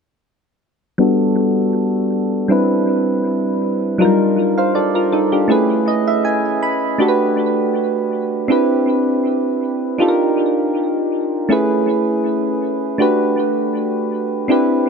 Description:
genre	R&B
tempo	80 BPM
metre	4/4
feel	swing 54% on 16ths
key	G major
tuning	A4 = 440 Hz
part	soft electric-piano-like synth keys	solo	1.0-14.9 s	F#3 to B5	-15 LUFS	equal	chorus, low-pass filter, tape echo
room	light reverb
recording	echo-heavy mix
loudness	-15 LUFS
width	side -5 dB against mid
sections	1.0-7.0 A section; 7.0-14.9 B section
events	filter sweep on synth keys 1.0-7.0; synth keys fill 5.5-7.0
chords	1.0 Gmaj9; 2.5 Cmaj9; 4.0 Ebmaj9; 5.5 Amaj9; 7.0 Gmaj9; 8.5 Cmaj9; 10.0 Ebmaj9; 11.5 Amaj9; 13.0 Gmaj9

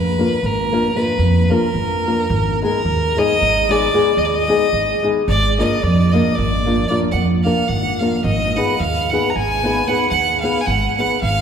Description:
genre	balkan folk, Balkan wedding band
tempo	222 BPM (eighths)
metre	11/8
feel	straight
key	Ab dorian sharp4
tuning	A4 = 440 Hz
part	rich fiddle	melody	0.0-11.4 s	Bb4 to Bb5	-19 LUFS	right 1 dB	none
part	upright bass	bass	0.0-11.4 s	Ab1 to F2	-20 LUFS	right 1 dB	none
part	flamenco guitar	accompaniment	0.2-11.2 s	Ab3 to Cb5	-19 LUFS	left 2 dB	none
room	wet cathedral reverb, RT60 4.6 s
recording	recorded in a church or concert hall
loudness	-15 LUFS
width	side -7 dB against mid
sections	0.0-11.4 A section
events	none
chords	0.0 Bb/Ab; 2.3 Abm; 5.3 Bb/Ab; 8.3 Abm

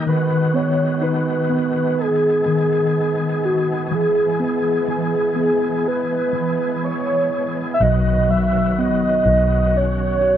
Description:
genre	pop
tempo	62 BPM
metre	4/4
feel	straight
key	unclear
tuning	A4 = 445 Hz
part	tine electric piano	accompaniment	0.0-10.4 s	B2 to F#4	-21 LUFS	equal	medium stereo tremolo
part	overdriven tonewheel organ	sustained chords	0.0-10.4 s	D#3 to G#4	-26 LUFS	left 1 dB	chorus vibrato, fast rotary speaker
part	warm velvety synth lead	melody	0.1-10.4 s	F#4 to E5	-19 LUFS	equal	chorus
part	vintage muted fingered electric bass	bass	7.8-10.4 s	B1	-20 LUFS	equal	none
room	moderate stone room reverb, RT60 0.9 s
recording	band playing live in one room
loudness	-16 LUFS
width	side -10 dB against mid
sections	0.0-10.4 A section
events	none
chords	0.1 G#m7/D#; 3.9 E; 7.8 B

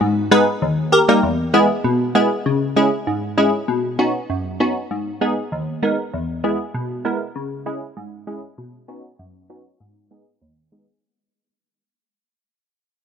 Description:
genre	dancehall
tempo	98 BPM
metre	4/4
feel	straight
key	G# minor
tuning	A4 = 439 Hz
part	wavetable chord stab	solo	0.0-10.9 s	D#2 to B4	-17 LUFS	equal	low-pass filter
room	light reverb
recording	dry, gritty hardware recording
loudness	-17 LUFS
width	side -7 dB against mid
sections	0.0-1.2 A section; 1.2-11.0 B section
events	fade-out 1.2-11.0; filter sweep on synth stab 1.2-11.0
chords	0.0 G#m; 0.6 D#; 1.2 E; 2.5 C#m; 3.7 Badd9; 4.9 G#m; 6.1 E; 7.4 C#m; 8.6 Badd9; 9.8 G#m

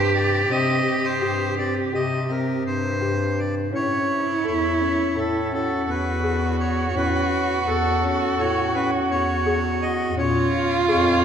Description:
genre	contemporary instrumental, chamber music in an uneven meter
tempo	168 BPM (eighths)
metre	9/8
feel	straight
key	unclear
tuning	A4 = 441 Hz
part	accordion	melody	0.0-11.2 s	A4 to Eb5	-26 LUFS	left 1 dB	none
part	dark cello	second line	0.0-11.2 s	E4 to G4	-24 LUFS	right 2 dB	none
part	felt-muted upright piano	arpeggios	0.0-11.2 s	C4 to A4	-27 LUFS	left 1 dB	none
part	mellow bass clarinet	bass	0.0-11.2 s	E2 to C3	-25 LUFS	left 2 dB	none
room	wet cathedral reverb, RT60 4.5 s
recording	recorded in a church or concert hall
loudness	-20 LUFS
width	side -8 dB against mid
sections	0.0-11.2 A section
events	none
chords	0.0 Cm; 3.7 A; 10.2 A#m7

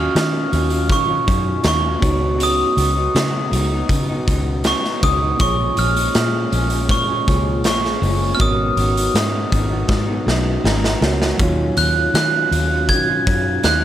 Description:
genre	indie pop, bedroom pop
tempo	80 BPM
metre	4/4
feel	straight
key	Eb minor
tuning	A4 = 441 Hz
part	glockenspiel with hard plastic mallets	melody	0.0-13.8 s	Db6 to Ab6	-21 LUFS	right 2 dB	wide subtle chorus
part	electric guitar through a small old amp	accompaniment	0.0-13.8 s	Ab2 to F4	-25 LUFS	left 2 dB	wide subtle chorus, vibrato effect
part	mellow tine electric piano	accompaniment	0.0-13.8 s	Gb3 to Bb5	-26 LUFS	right 4 dB	none
part	fingered electric bass	bass	0.0-13.8 s	Gb1 to Eb3	-21 LUFS	equal	none
part	raw garage drum kit	drums	0.2-13.8 s	hi-hat, kick drum, snare drum	-21 LUFS	equal	none
room	light reverb, small room reverb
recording	none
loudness	-15 LUFS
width	side -11 dB against mid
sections	0.0-13.8 A section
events	drum fill 9.9-11.4; tine electric piano fill 10.3-11.4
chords	0.0 Ebm9; 2.0 Db9sus4; 5.4 Bbm7; 8.4 Abm11; 11.4 Ebm9

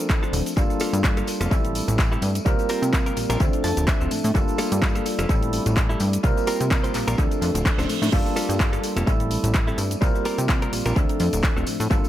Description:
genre	filtered disco house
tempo	127 BPM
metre	4/4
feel	swing 55% on 16ths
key	G dorian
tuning	A4 = 440 Hz
part	barky tine electric piano	accompaniment	0.0-12.1 s	F3 to Bb4	-26 LUFS	equal	phaser, sidechain pumping, tape echo
part	house drum kit	drums	0.0-12.1 s	cabasa, crash cymbal, finger snaps, handclaps, hi-hat, snare drum	-30 LUFS	equal	overdrive, sidechain pumping on hats, sidechain pumping on perc, sidechain pumping on cymbals, tape echo
part	electronic kick drum	drums	0.1-12.0 s	none	-22 LUFS	equal	overdrive
part	tambourine	percussion	0.1-12.1 s	none	-37 LUFS	left 5 dB	sidechain pumping on perc, tape echo
part	direct-recorded clean electric guitar	riff	0.2-11.8 s	Bb3 to A5	-32 LUFS	equal	sidechain pumping, tape echo
part	plucky analog bass	bass	0.3-12.0 s	D1 to C3	-25 LUFS	equal	sidechain pumping
part	reverse cymbal	sound effects	7.5-8.1 s	none	-34 LUFS	right 8 dB	none
room	light reverb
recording	echo-heavy mix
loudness	-20 LUFS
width	side -12 dB against mid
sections	0.0-12.1 A section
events	clean electric guitar fill 3.4-4.3; reverse cymbal 7.5-8.1; drum fill 7.8-8.1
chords	0.0 Dm7; 0.6 Gm9; 1.5 Am7; 2.5 C7sus4; 3.4 Dm7; 4.3 Gm9; 5.3 Am7; 6.2 C7sus4; 7.2 Dm7; 8.1 Gm9; 9.1 Am7; 10.0 C7sus4; 11.0 Dm7

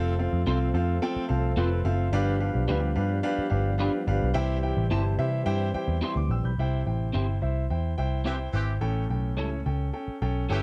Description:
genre	soul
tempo	108 BPM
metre	4/4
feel	straight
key	C major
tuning	A4 = 440 Hz
part	warm concert grand piano	accompaniment	0.0-10.6 s	G2 to G6	-32 LUFS	equal	none
part	percussive tonewheel organ	sustained chords	0.0-6.6 s	E3 to C4	-38 LUFS	equal	chorus vibrato, slow rotary speaker
part	vintage muted picked electric bass	bass	0.0-10.6 s	F1 to C3	-29 LUFS	equal	none
part	electric guitar through a small old amp	stabs	0.5-10.6 s	G3 to C5	-35 LUFS	equal	ensemble chorus
part	warm horn section	second line	8.2-10.6 s	E3 to G4	-37 LUFS	equal	none
room	little or no reverb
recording	dark, warm production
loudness	-27 LUFS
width	mono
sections	0.0-6.6 A section; 6.6-10.6 B section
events	grand piano fill 1.0-2.1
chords	0.0 F; 2.1 G7; 4.4 C; 8.8 A7

